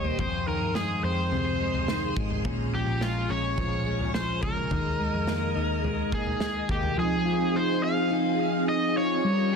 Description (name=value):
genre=dream pop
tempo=106 BPM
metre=4/4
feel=straight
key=unclear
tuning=A4 = 440 Hz
part: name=overdriven slide guitar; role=melody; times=0.0-9.6 s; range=F4 to F5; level=-30 LUFS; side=equal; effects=ping-pong delay
part: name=ensemble organ-string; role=sustained chords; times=0.0-9.6 s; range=F3 to Eb6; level=-31 LUFS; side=right 1 dB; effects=ensemble chorus
part: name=semi-hollow electric guitar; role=arpeggios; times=0.0-9.6 s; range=F2 to G4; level=-29 LUFS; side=left 2 dB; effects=wide subtle chorus, ping-pong delay
part: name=vintage muted picked electric bass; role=bass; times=0.0-7.0 s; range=Ab1 to G2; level=-33 LUFS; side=equal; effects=none
part: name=loose indie drum kit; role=drums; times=0.0-7.0 s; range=kick drum, snare drum, toms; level=-33 LUFS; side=equal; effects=none
room=light reverb, small room ambience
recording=dense, heavily limited modern master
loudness=-24 LUFS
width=side -5 dB against mid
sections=0.0-7.0 A section; 7.0-9.6 B section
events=none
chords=0.2 Fm7; 2.5 Bbm7; 4.7 Ebsus4; 7.0 Fm7